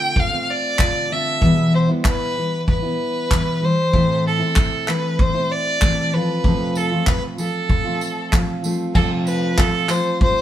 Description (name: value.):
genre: acoustic pop.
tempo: 96 BPM.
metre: 4/4.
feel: straight.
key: unclear.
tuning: A4 = 439 Hz.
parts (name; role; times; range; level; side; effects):
warm violin; melody; 0.0-10.4 s; A4 to G5; -22 LUFS; equal; none.
fingerpicked steel-string acoustic guitar; accompaniment; 0.0-10.4 s; E2 to F4; -21 LUFS; equal; none.
loose indie drum kit; drums; 0.2-10.4 s; crash cymbal, handclaps, kick drum, tambourine; -19 LUFS; equal; none.
room: moderate stone room reverb, RT60 1.0 s.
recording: band playing live in one room.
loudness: -17 LUFS.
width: side -11 dB against mid.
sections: 0.0-9.0 A section; 9.0-10.4 B section.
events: none.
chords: 0.0 Dm7; 1.4 Em; 3.9 Am; 6.1 F.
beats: 0.17 0.80 | 1.42 2.05 2.68 3.31 | 3.94 4.57 5.19 5.82 | 6.45 7.08 7.70 8.33 | 8.96 9.59 10.21.